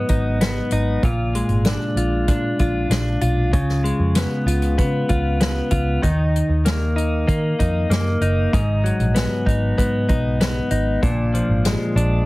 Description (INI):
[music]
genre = indie pop, bedroom pop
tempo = 96 BPM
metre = 4/4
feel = straight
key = Eb minor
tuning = A4 = 440 Hz
[part]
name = direct-recorded clean electric guitar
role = accompaniment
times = 0.0-12.3 s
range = Ab2 to F4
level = -21 LUFS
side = left 1 dB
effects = lush chorus, warbly pitch drift
[part]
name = vintage muted picked electric bass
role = bass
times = 0.0-12.2 s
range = Gb1 to Eb3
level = -21 LUFS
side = equal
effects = none
[part]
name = unplugged drum kit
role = drums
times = 0.1-12.1 s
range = hi-hat, kick drum, snare drum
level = -22 LUFS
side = equal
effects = none
[sound]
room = light reverb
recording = heavily compressed radio sound, multiband compression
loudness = -17 LUFS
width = side -20 dB against mid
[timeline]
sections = 0.0-12.3 A section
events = none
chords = 0.0 Abm7; 1.0 Bb7; 3.5 Db7; 6.0 Ebm; 8.5 Abm7; 11.0 Bb7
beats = 0.41 | 1.03 1.66 2.28 2.91 | 3.53 4.16 4.78 5.41 | 6.03 6.66 7.28 7.91 | 8.53 9.16 9.78 10.41 | 11.03 11.66